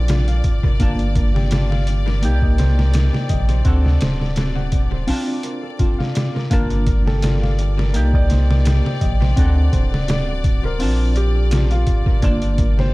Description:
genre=trip hop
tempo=84 BPM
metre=4/4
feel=swing 54% on 16ths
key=G minor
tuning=A4 = 441 Hz
part: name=semi-hollow electric guitar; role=accompaniment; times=0.0-12.9 s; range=Bb3 to A5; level=-26 LUFS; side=right 1 dB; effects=harmonic tremolo, tape echo
part: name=clear studio string section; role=sustained chords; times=0.0-12.9 s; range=D5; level=-33 LUFS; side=left 4 dB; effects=none
part: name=concert harp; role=arpeggios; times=0.0-12.9 s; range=F4 to G5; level=-31 LUFS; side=left 4 dB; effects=vintage 12-bit sampler grit, analog delay
part: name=warm sub bass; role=bass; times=0.0-12.9 s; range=D1 to D2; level=-18 LUFS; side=equal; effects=none
part: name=trip hop sampler-style drum kit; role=drums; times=0.1-12.9 s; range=hi-hat, kick drum, snare drum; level=-19 LUFS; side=equal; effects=analog delay
part: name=felt-muted upright piano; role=melody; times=6.5-12.9 s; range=F4 to D5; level=-29 LUFS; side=equal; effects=analog delay
room=studio ambience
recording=echo-heavy mix, vinyl crackle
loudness=-15 LUFS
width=side -21 dB against mid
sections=0.0-6.5 A section; 6.5-12.9 B section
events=none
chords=0.0 Bbmaj7; 0.8 Gm7; 2.2 Cm7; 3.7 D7; 5.1 Bbmaj7; 6.5 Gm7; 7.9 Cm7; 9.4 D7; 10.8 Bbmaj7; 12.2 Gm7

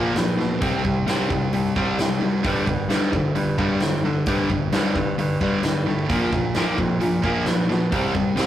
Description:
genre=hard rock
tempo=132 BPM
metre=4/4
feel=straight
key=G minor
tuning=A4 = 442 Hz
part: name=crunchy overdriven guitar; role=riff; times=0.0-8.5 s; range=G2 to C4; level=-23 LUFS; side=left 3 dB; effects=none
part: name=heavy high-gain guitar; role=riff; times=0.0-8.5 s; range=G2 to C4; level=-27 LUFS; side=right 6 dB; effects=distortion
part: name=clear baritone saxophone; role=bass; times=0.0-8.5 s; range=C2 to D3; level=-28 LUFS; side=right 1 dB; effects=none
part: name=huge arena drum kit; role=drums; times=0.2-8.5 s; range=hi-hat, kick drum, snare drum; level=-25 LUFS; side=right 1 dB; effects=none
room=moderate studio reverb, RT60 0.6 s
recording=rough rehearsal-room recording, tube saturation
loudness=-19 LUFS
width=side -12 dB against mid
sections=0.0-8.5 A section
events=none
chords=0.0 Bb5; 0.6 C5; 2.5 G5; 6.1 Bb5; 7.9 C5

